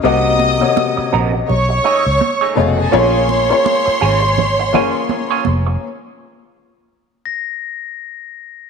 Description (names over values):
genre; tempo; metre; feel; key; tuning
lush 1970s-style soul; 83 BPM; 4/4; swing 58% on 16ths; Bb minor; A4 = 440 Hz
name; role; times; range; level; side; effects
clear studio violin section; second line; 0.0-5.4 s; F4 to Eb6; -17 LUFS; right 1 dB; none
warm grand piano; accompaniment; 0.0-5.8 s; B2 to Eb5; -17 LUFS; left 8 dB; none
electric guitar through a small old amp; riff; 0.0-5.7 s; A3 to Eb5; -20 LUFS; right 9 dB; wah, phaser
vintage muted fingered electric bass; bass; 0.0-5.8 s; F1 to C#2; -18 LUFS; right 1 dB; none
congas; percussion; 0.0-5.7 s; none; -24 LUFS; right 9 dB; none
glockenspiel with soft plastic mallets; texture; 7.3-8.7 s; Bb6; -25 LUFS; left 12 dB; none
room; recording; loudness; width
wet echo chamber reverb, RT60 1.9 s, small room ambience; 1960s-style stereo with parts hard left and right; -13 LUFS; side -6 dB against mid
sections
0.0-8.7 A section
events
stop 5.8-8.7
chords
0.0 Cm7b5; 1.5 B13; 2.9 Bbm7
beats
| 0.04 0.77 1.49 2.21 | 2.93 3.66 4.38 5.10 | 5.82 6.54 7.27 7.99